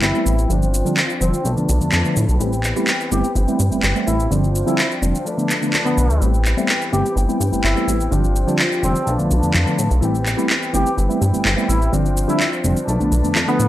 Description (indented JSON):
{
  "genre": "filtered disco house",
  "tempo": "126 BPM",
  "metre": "4/4",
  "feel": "straight",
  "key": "A minor",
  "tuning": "A4 = 442 Hz",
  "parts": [
    { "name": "brilliant horn section", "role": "melody", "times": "0.0-13.7 s", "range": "B3 to G4", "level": "-24 LUFS", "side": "equal", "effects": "low-pass filter" },
    { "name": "bell-like tine electric piano", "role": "accompaniment", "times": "0.0-13.7 s", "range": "D3 to E4", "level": "-22 LUFS", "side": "equal", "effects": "phaser, vintage 12-bit sampler grit, low-pass filter" },
    { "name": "warm studio string section", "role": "sustained chords", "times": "0.0-13.7 s", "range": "D4 to A5", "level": "-28 LUFS", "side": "equal", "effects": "low-pass filter" },
    { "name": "direct-recorded clean electric guitar", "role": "riff", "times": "0.0-13.7 s", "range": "E3 to G4", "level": "-27 LUFS", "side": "left 3 dB", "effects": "low-pass filter" },
    { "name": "plucky analog bass", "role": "bass", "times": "0.0-13.7 s", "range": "F1 to A2", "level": "-18 LUFS", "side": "equal", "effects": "low-pass filter" },
    { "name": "electronic handclaps and shaker", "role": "drums", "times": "0.0-13.7 s", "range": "none", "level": "-22 LUFS", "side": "equal", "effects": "overdrive" }
  ],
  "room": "light reverb, digital ambience",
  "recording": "dry, gritty hardware recording",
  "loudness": "-16 LUFS",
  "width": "side -13 dB against mid",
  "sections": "0.0-13.7 A section",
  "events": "filter sweep 0.0-13.7",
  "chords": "0.5 G7sus4; 1.5 Bm7b5; 2.4 Am9; 4.3 G7sus4; 5.3 Bm7b5; 6.2 Am9; 8.1 G7sus4; 9.1 Bm7b5; 10.0 Am9; 11.9 G7sus4; 12.9 Bm7b5"
}